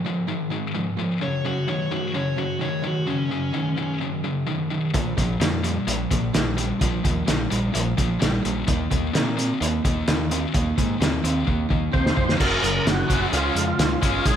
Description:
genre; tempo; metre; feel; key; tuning
classic rock; 129 BPM; 4/4; straight; unclear; A4 = 440 Hz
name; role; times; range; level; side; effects
crunchy overdriven guitar; riff; 0.0-14.4 s; Gb2 to Gb4; -29 LUFS; right 10 dB; none
tight distorted guitar; riff; 0.0-14.4 s; Gb2 to Db4; -26 LUFS; left 6 dB; distortion, slapback echo
dark smooth lead guitar; second line; 1.2-4.0 s; Db4 to Db5; -28 LUFS; left 1 dB; overdrive
growling picked electric bass; bass; 4.9-14.4 s; Gb1 to Bb2; -27 LUFS; equal; overdrive
cloth-damped thuddy drum kit; drums; 4.9-14.4 s; crash cymbal, hi-hat, kick drum, snare drum; -23 LUFS; equal; none
overdriven tonewheel organ; melody; 11.9-14.4 s; F4 to C5; -25 LUFS; right 2 dB; chorus vibrato, slow rotary speaker, slapback echo
room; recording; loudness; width
wet recital hall reverb, RT60 1.4 s, studio reverb; none; -20 LUFS; side -9 dB against mid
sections
0.0-12.4 A section; 12.4-14.4 B section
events
drum fill 11.5-12.4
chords
0.0 Ab5; 1.2 Gb5; 4.9 Bb5; 8.7 Eb5; 12.4 Gb5; 13.3 Db

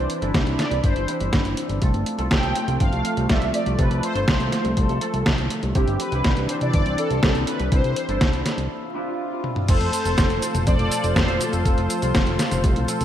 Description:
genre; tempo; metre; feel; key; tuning
italo disco; 122 BPM; 4/4; straight; unclear; A4 = 440 Hz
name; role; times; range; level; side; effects
mellow synth brass; melody; 0.0-11.9 s; F4 to G5; -27 LUFS; equal; chorus, phaser, ping-pong delay
lush unison pad; sustained chords; 0.0-13.0 s; E3 to B5; -29 LUFS; equal; chorus, vintage 12-bit sampler grit
electric guitar with an envelope filter; stabs; 0.0-13.0 s; A3 to D5; -29 LUFS; left 2 dB; wide subtle chorus
fat analog bass; bass; 0.0-13.0 s; F1 to F2; -24 LUFS; equal; none
detuned 8-bit digital drum machine; drums; 0.1-13.0 s; cabasa, crash cymbal, hi-hat, snare drum, toms; -25 LUFS; equal; gated reverb
electronic kick drum; drums; 0.3-12.7 s; none; -22 LUFS; equal; none
swell; sound effects; 8.8-9.7 s; none; -32 LUFS; right 1 dB; none
room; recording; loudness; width
moderate lush hall reverb, RT60 1.9 s; bright 1980s-style digital production, vinyl crackle; -19 LUFS; side -10 dB against mid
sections
0.0-9.7 A section; 9.7-13.0 B section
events
break 8.7-9.7; swell 8.8-9.7; drum fill 9.4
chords
0.0 Cadd9; 1.8 F; 5.8 Cadd9; 9.7 F

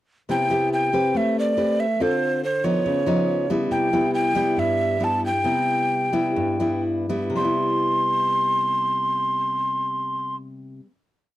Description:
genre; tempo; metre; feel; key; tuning
bossa nova; 119-141 BPM; 4/4; straight; C major; A4 = 445 Hz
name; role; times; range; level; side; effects
breathy mellow alto recorder; melody; 0.3-10.4 s; C5 to C6; -22 LUFS; right 1 dB; none
nylon-string guitar; accompaniment; 0.3-10.9 s; G2 to B4; -23 LUFS; left 1 dB; none
room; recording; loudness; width
little or no reverb; dry, close 1970s-style studio recording; -20 LUFS; side -14 dB against mid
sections
0.3-7.3 A section; 7.3-11.4 final chord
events
slowing down 3.7-7.3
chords
0.3 Cmaj7; 1.1 Am9; 2.0 Dm7; 2.8 Db9; 3.7 Cmaj7

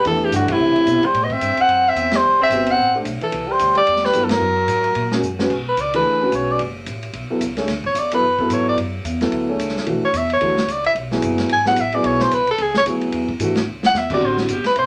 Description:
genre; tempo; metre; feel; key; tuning
modal jazz; 220 BPM; 4/4; swing 59% on 8ths; B dorian from 5.5 s; A4 = 442 Hz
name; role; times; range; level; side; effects
warm soprano saxophone; melody; 0.0-14.9 s; E4 to G#5; -19 LUFS; equal; none
breathy tenor saxophone; second line; 0.0-5.2 s; C3 to C4; -27 LUFS; equal; none
upright bass; bass; 0.0-14.9 s; F#1 to C3; -31 LUFS; equal; none
vintage drum kit; drums; 0.0-14.8 s; crash cymbal, hi-hat, kick drum, ride cymbal, snare drum; -30 LUFS; equal; none
warm concert grand piano; accompaniment; 0.1-14.5 s; D3 to C#5; -24 LUFS; equal; none
room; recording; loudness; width
wet studio ambience, RT60 0.5 s; none; -19 LUFS; mono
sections
0.0-5.5 A section; 5.5-14.2 B section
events
band accent 0.5, 2.1, 4.3; drum fill 5.2, 13.7; soprano saxophone solo 5.5-14.9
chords
0.0 Am11; 1.1 C; 4.4 F#; 5.5 Bm7; 9.9 E6; 14.2 Am11

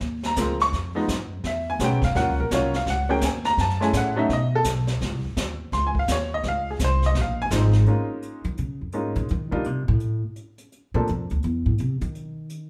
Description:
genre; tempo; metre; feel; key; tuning
jazz piano trio; 168 BPM; 4/4; swing 63% on 8ths; Db major; A4 = 441 Hz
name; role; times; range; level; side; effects
upright bass; bass; 0.0-12.7 s; E1 to D#3; -27 LUFS; equal; none
jazz brush drum kit; drums; 0.0-12.6 s; brushed snare drum, hi-hat, kick drum, snare drum; -32 LUFS; equal; none
bright upright piano; melody; 0.3-11.1 s; F3 to Db6; -26 LUFS; equal; none
room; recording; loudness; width
moderate large studio reverb, RT60 0.8 s; band playing live in one room; -24 LUFS; mono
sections
0.0-7.9 A section; 7.9-12.7 A section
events
upright piano solo 0.0-7.9; upright bass solo 7.9-12.7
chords
0.0 Gbmaj7 (rootless); 0.7 N.C.; 1.4 Eadd9; 2.2 Ebm7; 3.6 Gbm7; 4.3 Cb; 5.0 Dbmaj7; 7.9 C#69; 9.3 Cmadd9; 10.0 N.C.; 10.7 A#maj9; 12.1 N.C.

